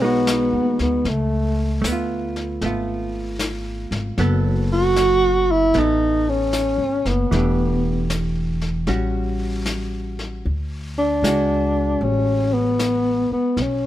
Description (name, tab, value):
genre	jazz ballad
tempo	77 BPM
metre	4/4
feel	swing 66% on 8ths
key	unclear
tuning	A4 = 438 Hz
part	breathy tenor saxophone	melody	0.0-13.9 s	A3 to F#4	-19 LUFS	equal	none
part	hollow-body jazz guitar	accompaniment	0.0-13.6 s	E3 to A4	-26 LUFS	right 2 dB	none
part	upright bass	bass	0.0-13.9 s	E1 to D#2	-24 LUFS	left 1 dB	none
part	vintage brush drum kit	drums	0.3-13.9 s	brushed snare drum, hi-hat, snare drum	-30 LUFS	left 3 dB	none
room	little or no reverb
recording	minimal, uncompressed stereo recording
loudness	-18 LUFS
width	side -13 dB against mid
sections	0.0-13.9 A section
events	none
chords	0.0 Emaj9; 1.1 C#7b13; 4.2 F#m; 7.3 Em7; 8.9 A6; 10.4 Dmaj7#11